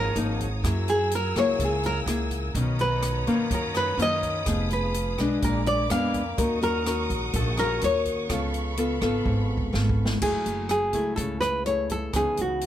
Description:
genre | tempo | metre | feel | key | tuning
bossa nova | 125 BPM | 4/4 | straight | unclear | A4 = 440 Hz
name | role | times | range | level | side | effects
nylon-string guitar | melody | 0.0-12.7 s | F#4 to F5 | -26 LUFS | equal | none
nylon-string guitar | accompaniment | 0.0-12.7 s | F#2 to Bb4 | -28 LUFS | left 2 dB | none
warm symphonic string section | sustained chords | 0.0-10.2 s | Ab4 to Fb6 | -34 LUFS | equal | none
upright bass | bass | 0.0-12.7 s | F1 to Gb2 | -29 LUFS | right 1 dB | none
open jazz drum kit | drums | 0.2-12.7 s | crash cymbal, hi-hat, kick drum, rim click, snare drum | -32 LUFS | equal | none
room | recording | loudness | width
light reverb | none | -23 LUFS | side -11 dB against mid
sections
0.0-10.2 A section; 10.2-12.7 B section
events
nylon-string guitar solo 0.0-10.2; drum fill 9.3-10.2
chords
0.0 Db69; 0.6 Gb9; 2.5 Bmaj9; 4.5 Fm7b5; 5.4 Bb7b9; 6.4 Ebm7; 8.3 Db7b13; 10.2 F#m9; 12.1 C#m9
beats
0.16 | 0.64 1.11 1.59 2.07 | 2.55 3.03 3.51 3.99 | 4.46 4.94 5.42 5.90 | 6.38 6.86 7.34 7.82 | 8.30 8.78 9.26 9.73 | 10.21 10.70 11.18 11.66 | 12.14 12.62

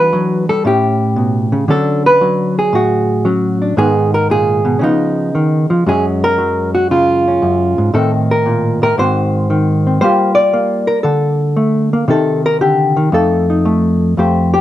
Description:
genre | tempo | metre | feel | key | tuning
solo jazz | 115 BPM | 4/4 | swing 69% on 8ths | unclear | A4 = 439 Hz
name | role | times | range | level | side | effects
hollow-body jazz guitar | solo | 0.0-14.6 s | F2 to D5 | -11 LUFS | equal | none
room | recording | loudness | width
light reverb | dark, warm production | -11 LUFS | side -13 dB against mid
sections
0.0-14.2 A section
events
none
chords
0.0 Em9; 0.6 A7; 1.7 Dmaj7; 3.8 Abmadd9; 4.8 Db9; 5.9 Gbmaj9; 7.9 Adim; 9.0 Ab7; 10.0 Gm9; 12.1 Cm; 13.1 F7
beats
0.12 0.64 1.16 | 1.69 2.21 2.73 3.25 | 3.77 4.29 4.81 5.33 | 5.85 6.37 6.89 7.41 | 7.93 8.45 8.97 9.49 | 10.01 10.53 11.05 11.57 | 12.09 12.61 13.13 13.65 | 14.17

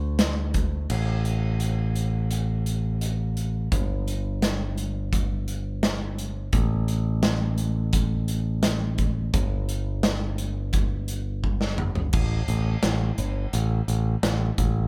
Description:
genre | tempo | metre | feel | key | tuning
post-rock | 86 BPM | 4/4 | straight | unclear | A4 = 440 Hz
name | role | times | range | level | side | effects
modern bright picked electric bass | bass | 0.0-14.9 s | G1 to D2 | -28 LUFS | equal | none
big rock drum kit | drums | 0.2-14.7 s | crash cymbal, hi-hat, kick drum, snare drum, toms | -28 LUFS | equal | none
room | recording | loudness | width
light reverb | band playing live in one room | -26 LUFS | mono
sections
0.9-12.1 A section; 12.1-14.9 B section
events
drum fill 11.4-12.1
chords
none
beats
0.20 | 0.90 1.60 2.31 3.01 | 3.72 4.42 5.13 5.83 | 6.53 7.24 7.94 8.64 | 9.34 10.04 10.74 11.44 | 12.14 12.84 13.54 14.23

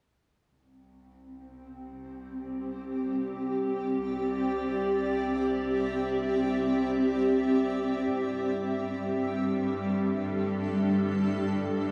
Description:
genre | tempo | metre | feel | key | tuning
ambient | free time | none | none | unclear | A4 = 440 Hz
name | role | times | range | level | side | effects
granular cloud pad | sustained chords | 1.7-11.9 s | G3 to E5 | -29 LUFS | equal | built-in reverb
clear chamber cello section | bass | 0.5-11.9 s | C2 to G2 | -43 LUFS | equal | none
room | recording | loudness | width
wet huge ambient reverb, RT60 7.6 s | none | -29 LUFS | mono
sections
0.5-11.9 A section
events
fade-in on cello section 0.5-11.9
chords
0.5 C; 8.1 G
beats
free time

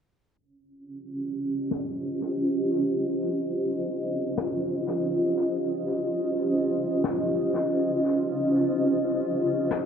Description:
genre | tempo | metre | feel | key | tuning
ambient dub | free time | none | none | Eb mixolydian | A4 = 440 Hz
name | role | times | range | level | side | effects
granular cloud pad | sustained chords | 0.9-9.9 s | Db4 to Eb5 | -24 LUFS | equal | built-in reverb
snare drum | drums | 1.7-9.9 s | none | -34 LUFS | left 5 dB | dub echo
room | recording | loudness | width
wet echo chamber reverb, RT60 1.8 s | echo-heavy mix, low-pass filter | -24 LUFS | side -7 dB against mid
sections
0.4-9.9 A section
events
filter sweep on ambient pad 0.4-9.9; filter sweep 0.4-9.9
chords
0.4 Eb13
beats
free time

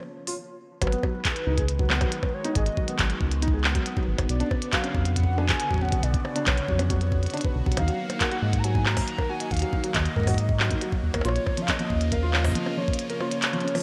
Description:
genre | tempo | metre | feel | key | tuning
IDM | 138 BPM | 4/4 | straight | G# dorian | A4 = 442 Hz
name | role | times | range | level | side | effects
warbly nostalgic lead | melody | 0.0-13.8 s | B4 to A#5 | -36 LUFS | equal | analog chorus, digital delay
phased analog pad | sustained chords | 0.0-13.8 s | C#3 to F#4 | -36 LUFS | equal | phaser, chorus
glitchy drum kit | drums | 0.0-13.8 s | handclaps, hi-hat, percussion blips | -31 LUFS | equal | gated reverb
felt-muted upright piano | arpeggios | 0.3-13.8 s | E#3 to D#5 | -35 LUFS | equal | delay
round analog bass | bass | 0.8-12.5 s | G#1 to G#2 | -28 LUFS | equal | none
electronic kick drum | drums | 0.8-13.0 s | none | -30 LUFS | equal | none
room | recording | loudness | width
light reverb | bright 1980s-style digital production | -25 LUFS | mono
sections
0.8-13.8 A section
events
stop 0.4-0.8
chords
0.0 A#m; 0.8 G#m7; 4.3 Bmadd9; 7.8 D#m; 11.2 A#m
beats
0.38 | 0.81 1.25 1.69 2.12 | 2.56 2.99 3.42 3.86 | 4.29 4.73 5.16 5.60 | 6.03 6.47 6.90 7.34 | 7.77 8.21 8.64 9.08 | 9.51 9.95 10.38 10.81 | 11.25 11.69 12.12 12.55 | 12.99 13.42

